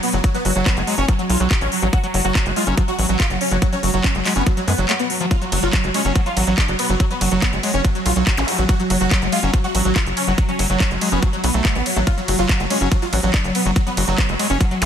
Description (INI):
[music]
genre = psychedelic trance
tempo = 142 BPM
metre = 4/4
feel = straight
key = F# harmonic minor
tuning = A4 = 440 Hz
[part]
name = dense compressed supersaw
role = melody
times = 0.0-14.9 s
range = F#3 to F#4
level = -22 LUFS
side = equal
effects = phaser, sidechain pumping, ping-pong delay
[part]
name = evolving wavetable pad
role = sustained chords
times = 0.0-14.9 s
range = F#3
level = -28 LUFS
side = right 1 dB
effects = ensemble chorus, built-in reverb, phaser, sidechain pumping
[part]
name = drum and bass drum kit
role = drums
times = 0.0-14.9 s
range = handclaps, hi-hat, ride cymbal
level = -24 LUFS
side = left 1 dB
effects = none
[part]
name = overdriven acid bass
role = riff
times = 0.1-14.9 s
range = E#3 to C#4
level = -25 LUFS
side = moving between left 4 dB and right 5 dB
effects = auto-pan, sidechain pumping, ping-pong delay
[part]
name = tight sequencer bass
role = bass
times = 0.1-14.9 s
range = F#1 to F#2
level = -21 LUFS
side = equal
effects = none
[part]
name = electronic kick drum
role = drums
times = 0.2-14.7 s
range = none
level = -18 LUFS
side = equal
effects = none
[part]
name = zap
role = sound effects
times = 8.4-8.5, 14.8-14.9 s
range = none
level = -26 LUFS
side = left 1 dB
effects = none
[sound]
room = digital ambience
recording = dense, heavily limited modern master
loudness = -16 LUFS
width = side -9 dB against mid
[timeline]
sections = 0.0-14.9 A section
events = none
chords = 0.0 F#5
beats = | 0.24 0.66 1.08 1.51 | 1.93 2.35 2.77 3.20 | 3.62 4.04 4.46 4.89 | 5.31 5.73 6.16 6.58 | 7.00 7.42 7.84 8.27 | 8.69 9.11 9.54 9.96 | 10.38 10.80 11.23 11.65 | 12.07 12.49 12.92 13.34 | 13.76 14.18 14.61